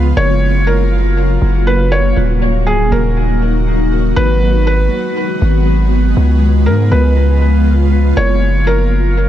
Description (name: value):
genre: hip hop, atmospheric cloud-rap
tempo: 120 BPM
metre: 4/4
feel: half-time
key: unclear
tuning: A4 = 440 Hz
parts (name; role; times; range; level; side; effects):
- felt-muted upright piano; melody; 0.0-9.3 s; Ab4 to Db5; -19 LUFS; equal; low-pass filter, tape echo
- ethereal airy pad; sustained chords; 0.0-9.3 s; Db3 to Gb4; -17 LUFS; left 1 dB; ensemble chorus, built-in reverb, tremolo
- long sustained 808-style bass; bass; 0.0-9.3 s; Db1 to Ab2; -12 LUFS; equal; none
room: small room ambience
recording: echo-heavy mix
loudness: -10 LUFS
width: side -11 dB against mid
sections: 0.0-9.3 A section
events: none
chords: 0.2 Gbmaj7; 2.2 Ebm7; 4.2 Abm7; 6.2 Db7; 8.2 Gbmaj7